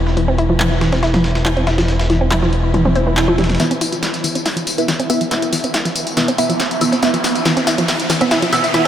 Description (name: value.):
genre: driving peak-time techno.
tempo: 140 BPM.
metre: 4/4.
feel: straight.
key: unclear.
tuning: A4 = 440 Hz.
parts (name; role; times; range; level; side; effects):
filtered dub chord stab; stabs; 0.0-8.9 s; B3 to E5; -19 LUFS; right 2 dB; phaser, analog chorus, tape echo.
growling FM bass; bass; 0.0-3.6 s; E1; -17 LUFS; equal; none.
metallic inharmonic drone; drone; 0.0-3.6 s; E3 to E4; -27 LUFS; left 1 dB; chorus, built-in reverb.
dusty soul sampler-style drum kit; drums; 0.1-8.8 s; hi-hat, snare drum; -28 LUFS; equal; high-pass filter on hats, low-pass filter on hats, high-pass filter on snare, low-pass filter on snare.
analog pluck; riff; 0.2-8.9 s; E3 to E4; -19 LUFS; equal; chorus, overdrive, tape echo.
punchy analog drum machine; drums; 0.6-8.9 s; handclaps, hi-hat, snare drum, tambourine, toms; -20 LUFS; equal; high-pass filter on toms, high-pass filter on snare, high-pass filter on hats, high-pass filter on perc, high-pass filter on room.
swell and riser; sound effects; 2.9-8.9 s; none; -25 LUFS; right 1 dB; none.
room: wet huge ambient reverb, RT60 7.4 s.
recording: dreamy mix soaked in reverb.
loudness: -14 LUFS.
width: side -10 dB against mid.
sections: 0.0-3.6 A section; 3.6-8.9 B section.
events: swell 2.9-3.6; build-up 3.6-8.9; drum fill 3.6-8.9; riser 3.6-8.9.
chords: 0.0 E5.